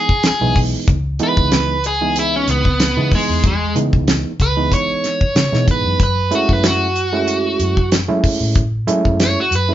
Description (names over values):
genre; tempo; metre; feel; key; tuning
straight-eighth soul blues; 94 BPM; 4/4; swing 54% on 16ths; C# minor; A4 = 441 Hz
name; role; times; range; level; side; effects
biting overdriven guitar; melody; 0.0-9.7 s; G#3 to C#5; -18 LUFS; right 1 dB; none
overdriven reed electric piano; accompaniment; 0.0-9.7 s; E3 to E4; -21 LUFS; right 3 dB; none
damped 70s drum kit; drums; 0.1-9.7 s; hi-hat, kick drum, snare drum; -17 LUFS; equal; none
vintage muted fingered electric bass; bass; 0.4-9.7 s; B1 to F#3; -20 LUFS; left 1 dB; none
room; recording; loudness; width
moderate studio reverb, RT60 0.6 s; band playing live in one room, nothing above 7.5 kHz; -14 LUFS; side -12 dB against mid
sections
0.0-9.7 A section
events
overdriven electric guitar solo 0.0-9.7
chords
0.0 C#m7; 6.0 F#m7